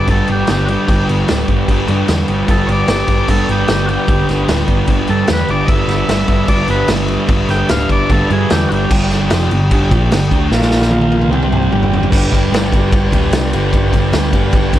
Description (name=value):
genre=garage rock duo or trio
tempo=150 BPM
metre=4/4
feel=straight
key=unclear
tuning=A4 = 438 Hz
part: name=overdriven combo organ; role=melody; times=0.0-8.9 s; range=F#4 to G5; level=-20 LUFS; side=left 1 dB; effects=none
part: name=overdriven combo organ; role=sustained chords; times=0.0-14.8 s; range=F4 to G5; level=-23 LUFS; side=equal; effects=none
part: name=thick fuzz guitar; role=riff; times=0.0-14.8 s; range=F2 to D4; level=-16 LUFS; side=right 1 dB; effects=distortion
part: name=hollow-body short-scale picked electric bass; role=bass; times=0.1-14.8 s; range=D1 to G2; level=-18 LUFS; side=equal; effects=tube saturation
part: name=vintage drum kit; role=drums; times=0.1-14.8 s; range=crash cymbal, kick drum, ride cymbal, snare drum, toms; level=-16 LUFS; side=equal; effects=none
room=moderate studio reverb, RT60 0.6 s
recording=lossy compression artefacts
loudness=-11 LUFS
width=side -13 dB against mid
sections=0.0-8.9 A section; 8.9-12.1 B section; 12.1-14.8 C section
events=transistor combo organ solo 0.0-8.9; drum fill 10.5-12.1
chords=0.0 G; 8.9 G5; 10.5 Bb5; 11.3 C5; 11.7 G5; 12.1 G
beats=0.09 0.49 | 0.89 1.29 1.69 2.09 | 2.49 2.89 3.29 3.69 | 4.09 4.49 4.89 5.30 | 5.70 6.10 6.50 6.90 | 7.30 7.71 8.11 8.51 | 8.91 9.31 9.71 10.11 | 10.51 10.91 11.32 11.72 | 12.12 12.52 12.92 13.32 | 13.73 14.13 14.53